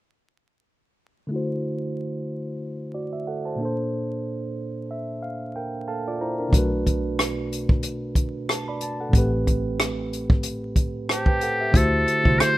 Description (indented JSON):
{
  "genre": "R&B, neo-soul",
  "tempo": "92 BPM",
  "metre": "4/4",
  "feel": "swing 57% on 16ths",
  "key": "unclear",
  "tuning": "A4 = 440 Hz",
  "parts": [
    { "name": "tine electric piano", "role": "accompaniment", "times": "1.3-12.6 s", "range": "A2 to B5", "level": "-26 LUFS", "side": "right 1 dB", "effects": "auto-pan, low-pass filter" },
    { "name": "vintage muted fingered electric bass", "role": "bass", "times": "6.5-12.4 s", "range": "A1 to D2", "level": "-28 LUFS", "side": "equal", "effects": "none" },
    { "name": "compact cocktail drum kit", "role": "drums", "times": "6.5-12.6 s", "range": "hi-hat, kick drum, rim click", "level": "-20 LUFS", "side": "equal", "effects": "none" },
    { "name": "trumpet with metal mute", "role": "melody", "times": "11.1-12.6 s", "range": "G4 to C5", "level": "-22 LUFS", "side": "left 1 dB", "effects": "slapback echo" }
  ],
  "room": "small room ambience",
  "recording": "rough home demo mix, vinyl crackle",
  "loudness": "-22 LUFS",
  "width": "side -16 dB against mid",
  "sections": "1.3-11.7 A section",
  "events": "filter sweep on tine electric piano 1.3-11.7; tine electric piano fill 4.6-6.5",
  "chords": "1.3 D7; 3.6 Bbmaj9; 6.5 Bm7; 9.1 Am9; 11.7 D7"
}